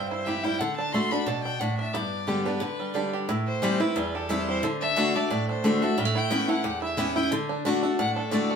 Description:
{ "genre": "bluegrass", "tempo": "179 BPM", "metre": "4/4", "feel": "swing 54% on 8ths", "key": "unclear", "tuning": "A4 = 440 Hz", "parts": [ { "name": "bluegrass banjo", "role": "melody", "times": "0.0-8.6 s", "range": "D3 to G4", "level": "-31 LUFS", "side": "right 6 dB", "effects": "none" }, { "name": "clear fiddle", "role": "melody", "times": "0.0-8.6 s", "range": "A4 to C6", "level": "-30 LUFS", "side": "left 2 dB", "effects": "none" }, { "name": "picked steel-string acoustic guitar", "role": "accompaniment", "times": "0.0-8.6 s", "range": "E2 to G4", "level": "-26 LUFS", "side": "left 1 dB", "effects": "none" } ], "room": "wet studio reverb, RT60 0.5 s", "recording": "band playing live in one room", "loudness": "-24 LUFS", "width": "side -6 dB against mid", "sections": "0.0-3.3 A section; 3.3-8.6 B section", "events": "none", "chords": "0.0 C; 0.6 D; 1.9 G; 3.3 Am7; 4.6 D; 6.0 Aadd9; 7.3 D" }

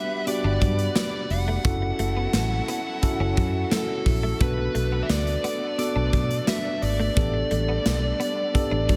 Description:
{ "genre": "1980s-style pop", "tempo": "87 BPM", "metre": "4/4", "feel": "straight", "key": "unclear", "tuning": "A4 = 440 Hz", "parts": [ { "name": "fuzz lead guitar", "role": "melody", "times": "0.0-9.0 s", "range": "A4 to F#5", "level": "-31 LUFS", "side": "equal", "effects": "distortion, tape echo, slapback echo" }, { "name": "tine electric piano", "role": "accompaniment", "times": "0.0-9.0 s", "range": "B3 to D5", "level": "-32 LUFS", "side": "equal", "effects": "slapback echo" }, { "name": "lush unison pad", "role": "sustained chords", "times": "0.0-9.0 s", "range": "F#3 to F#5", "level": "-38 LUFS", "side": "equal", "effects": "chorus" }, { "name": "direct-recorded clean electric guitar", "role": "riff", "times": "0.0-9.0 s", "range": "F#3 to D4", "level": "-38 LUFS", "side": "equal", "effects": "none" }, { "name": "modern studio drum kit", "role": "drums", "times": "0.3-9.0 s", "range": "hi-hat, kick drum, snare drum, tambourine", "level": "-28 LUFS", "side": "equal", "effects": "none" }, { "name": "vintage muted fingered electric bass", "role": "bass", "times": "0.4-9.0 s", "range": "F1 to B2", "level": "-28 LUFS", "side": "equal", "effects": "none" } ], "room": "moderate lush hall reverb, RT60 2.6 s", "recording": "big arena sound", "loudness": "-24 LUFS", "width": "mono", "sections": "0.0-9.0 A section", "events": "tine electric piano fill 8.5-9.0", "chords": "0.0 Gmaj7; 1.6 F#m7; 4.4 Bm7; 7.2 A9sus4" }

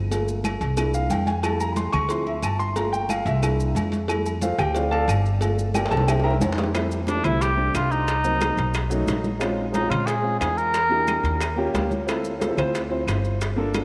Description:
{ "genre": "Afro-Cuban jazz", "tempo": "180 BPM", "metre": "4/4", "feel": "straight", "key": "F major", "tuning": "A4 = 439 Hz", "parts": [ { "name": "dark baby grand piano", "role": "accompaniment", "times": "0.0-13.8 s", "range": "F3 to Db6", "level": "-28 LUFS", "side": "equal", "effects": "none" }, { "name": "upright bass", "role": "bass", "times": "0.0-13.8 s", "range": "G1 to Bb2", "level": "-28 LUFS", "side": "equal", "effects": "none" }, { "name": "agogo bells and timbales", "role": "percussion", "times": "0.1-13.8 s", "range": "none", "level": "-36 LUFS", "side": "equal", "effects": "none" }, { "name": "congas", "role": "percussion", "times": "0.1-13.8 s", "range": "none", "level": "-34 LUFS", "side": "equal", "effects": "none" }, { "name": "cowbell and bongos", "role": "percussion", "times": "0.1-13.8 s", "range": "none", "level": "-34 LUFS", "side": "equal", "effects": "none" }, { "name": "maracas", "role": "percussion", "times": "0.1-13.8 s", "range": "none", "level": "-44 LUFS", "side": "equal", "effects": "none" }, { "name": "claves", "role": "percussion", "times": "0.4-13.8 s", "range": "none", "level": "-41 LUFS", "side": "equal", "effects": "none" }, { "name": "mellow cor anglais", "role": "melody", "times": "7.1-11.6 s", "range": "D4 to Bb4", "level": "-27 LUFS", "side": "equal", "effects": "none" } ], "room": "moderate plate reverb, RT60 3.5 s", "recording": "none", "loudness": "-23 LUFS", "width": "mono", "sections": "0.0-6.7 A section; 6.7-13.8 B section", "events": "grand piano solo 0.0-6.7; drum fill 5.8-6.7; grand piano fill 11.4-12.1", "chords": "0.1 Gm7; 0.8 C7; 1.4 Fmaj7; 2.1 Dm7; 2.8 Gm7; 3.4 C7; 4.1 Fmaj7; 4.8 Dm7; 5.4 Gm7; 6.1 C7; 6.7 Fmaj7; 8.1 Cm7b5; 8.7 B9; 9.4 Bbm7; 10.7 Em7b5; 11.4 Eb9; 12.1 Dm7" }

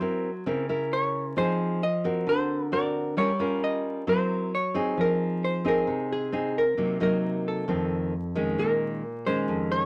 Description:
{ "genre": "bossa nova", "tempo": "133 BPM", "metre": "4/4", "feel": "straight", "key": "F minor", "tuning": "A4 = 440 Hz", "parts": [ { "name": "hollow-body jazz guitar", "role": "melody", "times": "0.0-9.9 s", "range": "Ab4 to Eb5", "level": "-30 LUFS", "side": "equal", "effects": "none" }, { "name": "nylon-string guitar", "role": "accompaniment", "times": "0.0-9.9 s", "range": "F2 to Bb4", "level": "-29 LUFS", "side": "equal", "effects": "none" } ], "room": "moderate studio reverb, RT60 0.5 s", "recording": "vinyl crackle", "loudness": "-27 LUFS", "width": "mono", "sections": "0.0-8.6 A section; 8.6-9.9 B section", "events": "none", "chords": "0.0 Gb7#11; 1.4 Fm7; 2.3 Daug7; 3.2 Gm7b5; 4.1 Gb7#11; 5.0 Fm7; 6.8 Cm7b5; 7.7 F7; 8.6 Bbm11" }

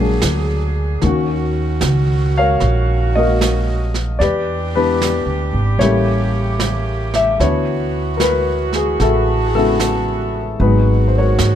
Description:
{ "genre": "jazz ballad", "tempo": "75 BPM", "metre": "4/4", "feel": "swing 69% on 8ths", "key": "unclear", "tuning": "A4 = 439 Hz", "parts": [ { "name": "warm baby grand piano", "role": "accompaniment", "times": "0.0-11.6 s", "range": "D#3 to E#5", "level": "-18 LUFS", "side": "left 4 dB", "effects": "none" }, { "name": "bright saxophone section", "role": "sustained chords", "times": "0.0-11.6 s", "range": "B2 to Ab4", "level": "-24 LUFS", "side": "right 6 dB", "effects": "none" }, { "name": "upright bass", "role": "bass", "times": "0.0-11.6 s", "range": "G#1 to G#2", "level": "-18 LUFS", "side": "right 1 dB", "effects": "none" }, { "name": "jazz brush drum kit", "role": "drums", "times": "0.2-11.6 s", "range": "brushed snare drum, hi-hat, snare drum", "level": "-24 LUFS", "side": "right 4 dB", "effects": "none" } ], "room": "light reverb", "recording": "dark, warm production", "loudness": "-14 LUFS", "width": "side -10 dB against mid", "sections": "0.0-11.6 A section", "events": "none", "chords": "0.0 A#7alt; 1.0 D#m7; 4.2 Em7; 5.8 A7b9; 7.4 D69; 10.6 G#m9" }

